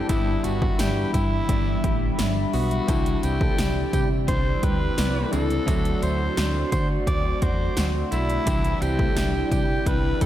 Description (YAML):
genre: 1980s-style pop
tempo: 86 BPM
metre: 4/4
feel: straight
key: G major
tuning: A4 = 439 Hz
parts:
  - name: raspy tenor saxophone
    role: melody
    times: 0.0-10.3 s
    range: E4 to D5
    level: -29 LUFS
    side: equal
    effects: analog delay
  - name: crunchy overdriven guitar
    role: accompaniment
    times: 0.0-10.3 s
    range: G2 to D4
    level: -36 LUFS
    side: left 5 dB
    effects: none
  - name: glassy digital keys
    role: accompaniment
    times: 0.0-10.3 s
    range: E3 to F#4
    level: -31 LUFS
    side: left 2 dB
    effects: chorus
  - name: glassy FM pad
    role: sustained chords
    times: 0.0-10.3 s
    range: G3 to B5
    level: -31 LUFS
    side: left 1 dB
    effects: ensemble chorus, built-in reverb
  - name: direct-recorded clean electric guitar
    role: riff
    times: 0.0-10.3 s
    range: E3 to G4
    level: -34 LUFS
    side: right 5 dB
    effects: analog chorus, analog delay
  - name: woody fretless electric bass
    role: bass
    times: 0.1-10.3 s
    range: G1 to D3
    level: -26 LUFS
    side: equal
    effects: none
  - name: 80s electronic pad drums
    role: drums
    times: 0.1-10.3 s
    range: hi-hat, kick drum, snare drum, tambourine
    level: -25 LUFS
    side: equal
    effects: overdrive
  - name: tambourine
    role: percussion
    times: 0.1-10.3 s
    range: none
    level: -46 LUFS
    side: right 6 dB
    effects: none
  - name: mellow synth brass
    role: stabs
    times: 3.4-10.3 s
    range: G3 to D5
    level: -35 LUFS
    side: equal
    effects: chorus
room: moderate lush hall reverb, RT60 1.9 s, digital ambience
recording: dreamy mix soaked in reverb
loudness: -21 LUFS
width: side -12 dB against mid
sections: 0.0-10.3 A section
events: none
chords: 0.1 G6; 2.9 Cadd9; 5.7 D7; 8.5 Cadd9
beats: | 0.10 0.79 1.49 2.19 | 2.89 3.58 4.28 4.98 | 5.68 6.38 7.07 7.77 | 8.47 9.17 9.86